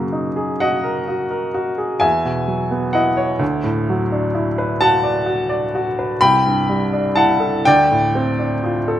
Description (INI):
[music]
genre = classical, impressionist solo piano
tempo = 41-44 BPM (dotted quarters)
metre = 9/8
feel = rubato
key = C lydian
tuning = A4 = 442 Hz
[part]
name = clear baby grand piano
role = solo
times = 0.0-9.0 s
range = C2 to B5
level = -16 LUFS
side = equal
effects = none
[sound]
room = moderate concert hall reverb, RT60 1.9 s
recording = close, detailed microphones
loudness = -16 LUFS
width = side -11 dB against mid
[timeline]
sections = 0.0-9.0 A section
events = none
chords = 0.0 F#69; 2.0 E69; 3.4 D69; 6.2 C69; 7.6 Dm7